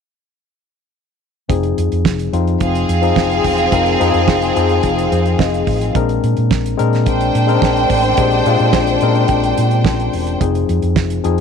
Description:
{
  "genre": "disco",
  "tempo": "108 BPM",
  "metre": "4/4",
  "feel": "straight",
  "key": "F dorian",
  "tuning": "A4 = 438 Hz",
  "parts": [
    { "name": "barky tine electric piano", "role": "accompaniment", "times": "1.5-11.4 s", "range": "F3 to Eb5", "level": "-18 LUFS", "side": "left 14 dB", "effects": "overdrive" },
    { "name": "fingered electric bass", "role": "bass", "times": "1.5-11.4 s", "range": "E1 to Bb2", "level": "-18 LUFS", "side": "right 2 dB", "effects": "none" },
    { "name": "damped 70s drum kit", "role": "drums", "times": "1.5-11.4 s", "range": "hi-hat, kick drum, snare drum", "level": "-19 LUFS", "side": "right 5 dB", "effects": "none" },
    { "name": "clear studio violin section", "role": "second line", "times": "2.6-10.4 s", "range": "C4 to G5", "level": "-17 LUFS", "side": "right 3 dB", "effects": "none" }
  ],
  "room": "light reverb",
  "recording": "1960s-style stereo",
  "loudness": "-13 LUFS",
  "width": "side -6 dB against mid",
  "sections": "1.5-11.4 A section",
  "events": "tine electric piano fill 4.8-6.0",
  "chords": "1.5 Fm7; 6.0 Bb9; 10.4 Fm7"
}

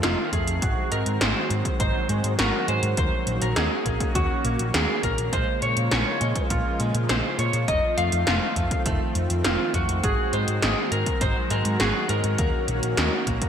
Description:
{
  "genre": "synthwave",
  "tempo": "102 BPM",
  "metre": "4/4",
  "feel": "straight",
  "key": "unclear",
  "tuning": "A4 = 440 Hz",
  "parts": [
    { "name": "lightly driven lead guitar", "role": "melody", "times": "0.0-13.5 s", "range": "F4 to F5", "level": "-27 LUFS", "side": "equal", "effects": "wide subtle chorus, ping-pong delay" },
    { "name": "soft supersaw", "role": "sustained chords", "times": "0.0-13.5 s", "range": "Db3 to Gb4", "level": "-30 LUFS", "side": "right 1 dB", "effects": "sidechain pumping" },
    { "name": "clean electric guitar", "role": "arpeggios", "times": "0.0-13.5 s", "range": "Ab3 to Gb4", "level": "-33 LUFS", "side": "right 3 dB", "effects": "lush chorus, low-pass filter, ping-pong delay" },
    { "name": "picked electric bass", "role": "bass", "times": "0.0-13.4 s", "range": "F1 to Bb2", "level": "-26 LUFS", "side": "equal", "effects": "none" },
    { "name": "80s electronic pad drums", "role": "drums", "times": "0.0-13.5 s", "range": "hi-hat, snare drum", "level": "-27 LUFS", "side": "equal", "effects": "gated reverb" },
    { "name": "electronic kick drum", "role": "drums", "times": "0.3-13.5 s", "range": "none", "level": "-27 LUFS", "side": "equal", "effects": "none" }
  ],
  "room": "moderate lush hall reverb, RT60 2.0 s",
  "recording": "bright 1980s-style digital production",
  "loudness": "-21 LUFS",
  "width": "side -8 dB against mid",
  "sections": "0.0-13.5 A section",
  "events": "filter sweep on clean electric guitar 0.0-13.5",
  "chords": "0.0 F7; 0.6 Ab7; 3.0 Ebm7; 5.3 Bbm7; 7.7 F7; 10.0 Ab7; 12.4 Ebm7"
}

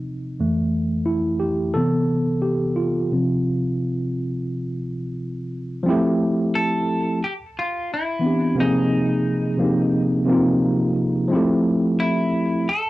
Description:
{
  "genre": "lo-fi hip hop",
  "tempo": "88 BPM",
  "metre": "4/4",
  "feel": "swing 65% on 16ths",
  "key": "unclear",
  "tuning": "A4 = 440 Hz",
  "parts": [
    { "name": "tine electric piano", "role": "accompaniment", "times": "0.0-12.7 s", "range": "F2 to A4", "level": "-19 LUFS", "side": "equal", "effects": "medium stereo tremolo, low-pass filter, cassette tape" },
    { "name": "semi-hollow electric guitar", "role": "melody", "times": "6.6-12.9 s", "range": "Eb4 to A4", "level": "-26 LUFS", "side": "left 1 dB", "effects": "cassette tape" }
  ],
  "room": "wet booth ambience, RT60 0.2 s",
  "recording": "home recording on cassette",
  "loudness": "-19 LUFS",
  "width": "side -18 dB against mid",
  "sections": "0.0-5.8 A section; 5.8-12.9 B section",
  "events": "tine electric piano solo 0.0-5.8; filter sweep on tine electric piano 0.0-5.8",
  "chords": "0.4 Fmaj7; 1.8 Cmaj7; 3.1 Csus4; 5.8 Fmaj9; 7.2 Cmaj7; 8.6 Ab69/C; 11.3 Fmaj9"
}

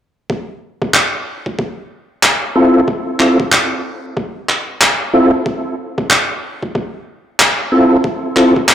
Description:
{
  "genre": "glitch hop",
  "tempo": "93 BPM",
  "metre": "4/4",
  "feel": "swing 61% on 16ths",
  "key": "unclear",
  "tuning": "A4 = 439 Hz",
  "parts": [
    { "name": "electronic kick drum", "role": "drums", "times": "0.3-8.7 s", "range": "none", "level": "-21 LUFS", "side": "equal", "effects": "overdrive, high-pass filter on kick, high-pass filter on room" },
    { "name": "electronic handclaps", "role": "drums", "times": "0.9-8.7 s", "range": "none", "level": "-13 LUFS", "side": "equal", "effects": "overdrive" },
    { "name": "tonewheel organ", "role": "stabs", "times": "2.6-8.5 s", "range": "C4 to A4", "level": "-13 LUFS", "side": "equal", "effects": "chorus vibrato, slow rotary speaker, sidechain pumping, low-pass filter, digital delay" }
  ],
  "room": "moderate plate reverb, RT60 2.3 s",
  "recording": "played on a big sound system in a bare room, large studio reverb",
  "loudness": "-12 LUFS",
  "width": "side -10 dB against mid",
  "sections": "0.3-8.7 A section",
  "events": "none",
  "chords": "0.3 Cadd11"
}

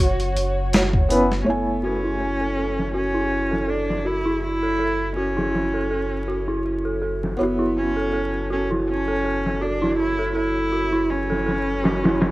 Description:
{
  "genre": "trip hop",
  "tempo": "81 BPM",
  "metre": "4/4",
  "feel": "swing 55% on 16ths",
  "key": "F# minor",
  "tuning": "A4 = 440 Hz",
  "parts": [
    { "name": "dark cello", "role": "melody", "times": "0.0-12.3 s", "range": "B3 to F#4", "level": "-26 LUFS", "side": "equal", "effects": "tape echo" },
    { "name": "dark analog pad", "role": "sustained chords", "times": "0.0-12.3 s", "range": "F#4 to B5", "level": "-33 LUFS", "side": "right 1 dB", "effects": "chorus" },
    { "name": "warm sub bass", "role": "bass", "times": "0.0-12.3 s", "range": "F#1", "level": "-29 LUFS", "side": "equal", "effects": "none" },
    { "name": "trip hop sampler-style drum kit", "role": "drums", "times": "0.2-12.3 s", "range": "hi-hat, kick drum, snare drum", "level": "-23 LUFS", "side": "equal", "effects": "low-pass filter on kick, low-pass filter on hats, low-pass filter on snare, low-pass filter on room" },
    { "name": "felt-muted upright piano", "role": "accompaniment", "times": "1.1-12.3 s", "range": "A3 to G#5", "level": "-25 LUFS", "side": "equal", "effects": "tremolo, tape echo" },
    { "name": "dark detuned synth bell", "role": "arpeggios", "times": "1.5-12.3 s", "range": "E4 to A4", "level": "-24 LUFS", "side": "right 1 dB", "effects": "chorus, low-pass filter, tape echo" }
  ],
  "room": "light reverb",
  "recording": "rough home demo mix, vinyl crackle",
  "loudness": "-20 LUFS",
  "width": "side -18 dB against mid",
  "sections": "0.0-1.5 A section; 1.5-12.3 B section",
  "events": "filter sweep on synth bell 1.5-12.3",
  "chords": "0.0 F#7sus4; 1.5 F#m7; 7.4 A6/F#"
}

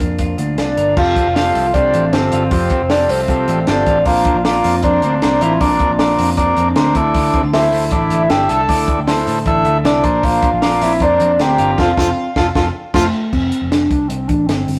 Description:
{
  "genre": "jangly indie pop",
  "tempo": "155 BPM",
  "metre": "4/4",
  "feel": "straight",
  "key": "F major",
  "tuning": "A4 = 441 Hz",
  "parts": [
    { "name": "hollow clarinet-like synth lead", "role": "melody", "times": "0.0-14.8 s", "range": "A3 to A5", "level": "-20 LUFS", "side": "equal", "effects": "chorus, phaser, analog delay" },
    { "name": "electric guitar through a small old amp", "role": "arpeggios", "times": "0.0-12.3 s", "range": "F2 to Bb4", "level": "-24 LUFS", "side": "equal", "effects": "none" },
    { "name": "vintage muted picked electric bass", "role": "bass", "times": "0.0-14.8 s", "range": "F1 to A2", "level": "-24 LUFS", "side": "equal", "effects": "none" },
    { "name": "compact cocktail drum kit", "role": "drums", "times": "0.0-14.8 s", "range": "crash cymbal, hi-hat, kick drum, snare drum", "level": "-22 LUFS", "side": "equal", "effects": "none" },
    { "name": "breathy trumpet", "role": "second line", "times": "0.6-13.0 s", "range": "C4 to A4", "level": "-25 LUFS", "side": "equal", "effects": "none" },
    { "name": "combo organ", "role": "accompaniment", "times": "1.0-13.1 s", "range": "D4 to E5", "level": "-20 LUFS", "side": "equal", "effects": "none" }
  ],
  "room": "moderate stone room reverb, RT60 1.0 s",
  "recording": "rough rehearsal-room recording",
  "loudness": "-15 LUFS",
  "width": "mono",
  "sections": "1.0-13.3 A section; 13.3-14.8 B section",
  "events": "band accent 11.8-13.3",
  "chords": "0.0 Bb; 1.0 Fadd9; 4.1 Bbadd9; 7.0 Dsus2; 10.0 Bbadd9; 11.8 F"
}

